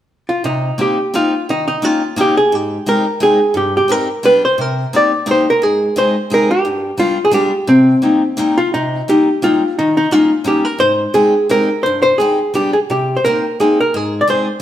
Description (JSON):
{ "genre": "musette waltz", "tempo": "174 BPM", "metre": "3/4", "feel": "swing 54% on 8ths, rubato", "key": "C minor", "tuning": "A4 = 439 Hz", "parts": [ { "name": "archtop guitar, miked and amplified", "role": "melody", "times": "0.3-14.6 s", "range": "C4 to D5", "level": "-14 LUFS", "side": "equal", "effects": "none" }, { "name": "picked steel-string acoustic guitar", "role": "accompaniment", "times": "0.4-14.6 s", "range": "G2 to Ab4", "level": "-17 LUFS", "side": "left 2 dB", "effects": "none" } ], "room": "wet stone room reverb, RT60 1.3 s", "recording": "band playing live in one room", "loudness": "-12 LUFS", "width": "side -11 dB against mid", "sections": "0.4-8.7 A section; 8.7-14.6 A section", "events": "none", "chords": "0.4 Cm7; 1.5 Eb7; 2.5 Abmaj7; 3.5 Cm/G; 4.2 G; 4.6 Cm7; 5.6 Ab; 6.6 G7; 7.7 Cm7; 9.8 Eb7; 10.8 Abmaj7; 11.8 Cm/G; 12.5 G; 12.9 Cm7; 13.9 Ab" }